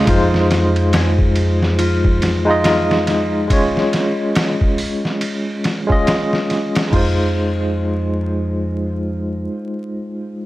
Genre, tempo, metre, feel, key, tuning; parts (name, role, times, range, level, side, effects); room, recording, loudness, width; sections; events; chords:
trip hop; 70 BPM; 4/4; swing 60% on 16ths; F minor; A4 = 440 Hz
barky tine electric piano; accompaniment; 0.0-10.5 s; Ab3 to Eb5; -18 LUFS; equal; medium stereo tremolo, low-pass filter, tape echo
concert harp; arpeggios; 0.0-9.4 s; F4 to Bb4; -27 LUFS; left 2 dB; tape echo
upright bass; bass; 0.0-9.5 s; F2; -19 LUFS; equal
trip hop sampler-style drum kit; drums; 0.1-7.1 s; crash cymbal, hi-hat, kick drum, ride cymbal, snare drum; -19 LUFS; equal
light reverb; vinyl crackle; -15 LUFS; side -17 dB against mid
0.1-6.9 A section; 6.9-10.3 B section
0.1 Fm7; 3.5 Db; 6.9 Fm7